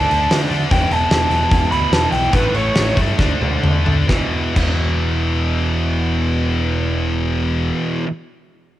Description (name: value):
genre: hard rock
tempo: 128-151 BPM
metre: 4/4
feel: straight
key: unclear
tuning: A4 = 439 Hz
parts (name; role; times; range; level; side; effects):
- lead guitar through a small cranked amp; melody; 0.0-3.0 s; B4 to B5; -20 LUFS; right 1 dB; overdrive, cassette tape, analog delay
- heavy high-gain guitar; riff; 0.0-8.1 s; E2 to D4; -23 LUFS; right 6 dB; distortion, cassette tape
- scooped high-gain guitar; riff; 0.0-8.1 s; E2 to D4; -22 LUFS; left 7 dB; distortion, cassette tape
- overdriven picked electric bass; bass; 0.0-7.7 s; E1 to D3; -21 LUFS; equal; none
- huge arena drum kit; drums; 0.1-4.7 s; crash cymbal, hi-hat, kick drum, snare drum, toms; -19 LUFS; equal; cassette tape
room: studio ambience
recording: home recording on cassette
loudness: -15 LUFS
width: side -14 dB against mid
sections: 0.0-4.1 A section; 4.1-7.8 B section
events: lead electric guitar solo 0.0-4.1; slowing down 0.7-4.1; drum fill 3.2-4.1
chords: 0.0 D5; 0.7 E5; 2.3 A; 3.2 D5; 4.1 E5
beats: 0.30 | 0.70 1.10 1.50 1.91 | 2.33 2.75 3.18 3.63 | 4.09 4.56 5.03 5.50 | 5.97 6.44 6.91 7.38